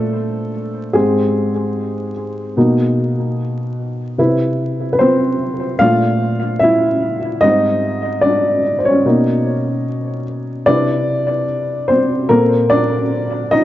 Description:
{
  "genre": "hip hop",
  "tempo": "74 BPM",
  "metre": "4/4",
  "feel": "swing 57% on 16ths",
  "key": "unclear",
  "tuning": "A4 = 440 Hz",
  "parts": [
    { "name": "dark upright piano", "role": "solo", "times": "0.0-13.6 s", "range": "Ab2 to F5", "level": "-14 LUFS", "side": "equal", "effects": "low-pass filter, tape echo" }
  ],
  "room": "moderate plate reverb, RT60 2.6 s",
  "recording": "dark, warm production, vinyl crackle, nothing above 7.6 kHz",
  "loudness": "-14 LUFS",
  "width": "side -14 dB against mid",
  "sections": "0.0-13.6 A section",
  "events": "upright piano solo 0.0-13.6",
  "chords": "0.0 Bbmaj7; 0.9 Abmaj7; 2.6 Bmaj7; 4.2 Cmaj7; 5.8 Bbmaj7; 7.4 Abmaj7; 9.0 Bmaj9; 10.7 Cmaj9; 12.3 Bbmaj9",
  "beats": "0.13 | 0.94 1.75 2.56 3.37 | 4.18 4.99 5.80 6.62 | 7.43 8.24 9.05 9.86 | 10.67 11.48 12.29 13.10"
}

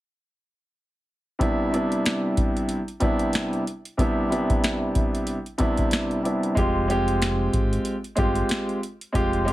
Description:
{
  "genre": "hip hop, boom-bap hip-hop",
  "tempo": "93 BPM",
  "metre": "4/4",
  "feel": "swing 58% on 16ths",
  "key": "C major",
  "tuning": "A4 = 439 Hz",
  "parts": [
    { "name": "dark baby grand piano", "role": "accompaniment", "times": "1.4-9.5 s", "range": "C3 to G4", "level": "-23 LUFS", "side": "equal", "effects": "high-pass filter, low-pass filter" },
    { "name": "booming analog drum machine", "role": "drums", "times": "1.4-9.5 s", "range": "hi-hat, kick drum, snare drum", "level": "-26 LUFS", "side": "equal", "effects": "none" },
    { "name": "sub bass with octave", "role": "bass", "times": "6.6-9.5 s", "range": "F1 to Ab1", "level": "-27 LUFS", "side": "equal", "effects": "none" }
  ],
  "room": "light reverb",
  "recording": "heavily compressed radio sound",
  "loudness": "-22 LUFS",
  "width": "side -16 dB against mid",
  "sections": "1.4-9.5 A section",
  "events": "none",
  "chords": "1.4 Cmaj7; 6.6 Fmadd9",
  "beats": "| 1.40 2.05 2.69 3.34 | 3.98 4.63 5.27 5.92 | 6.56 7.21 7.85 8.50 | 9.14"
}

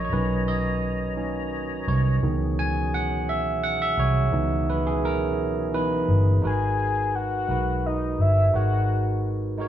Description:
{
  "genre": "slow six-eight R&B",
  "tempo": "57 BPM (dotted quarters)",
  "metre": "6/8",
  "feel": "straight",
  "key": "unclear",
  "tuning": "A4 = 440 Hz",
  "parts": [
    { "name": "barky tine electric piano", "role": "accompaniment", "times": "0.0-9.7 s", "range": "A#2 to G#5", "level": "-26 LUFS", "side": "right 2 dB", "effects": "none" },
    { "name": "tonewheel organ", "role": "sustained chords", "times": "0.0-6.4 s", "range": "B2 to A#5", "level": "-34 LUFS", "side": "right 1 dB", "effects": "overdrive, chorus vibrato, slow rotary speaker" },
    { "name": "vintage muted fingered electric bass", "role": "bass", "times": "0.0-9.7 s", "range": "G1 to C#2", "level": "-25 LUFS", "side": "equal", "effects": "none" },
    { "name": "soft octave-layered synth lead", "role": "melody", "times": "6.5-9.3 s", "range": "D#5 to G#5", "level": "-26 LUFS", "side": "left 2 dB", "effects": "chorus" }
  ],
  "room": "moderate stone room reverb, RT60 1.1 s",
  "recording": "band playing live in one room, small room ambience",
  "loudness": "-22 LUFS",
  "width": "side -10 dB against mid",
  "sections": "0.0-6.4 A section; 6.4-9.7 B section",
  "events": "tine electric piano solo 0.0-6.4",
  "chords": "0.0 Bmaj9; 2.2 C#m9; 6.4 G#m7",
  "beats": "| 0.10 1.16 | 2.21 3.26 | 4.32 5.37 | 6.42 7.47 | 8.53 9.58"
}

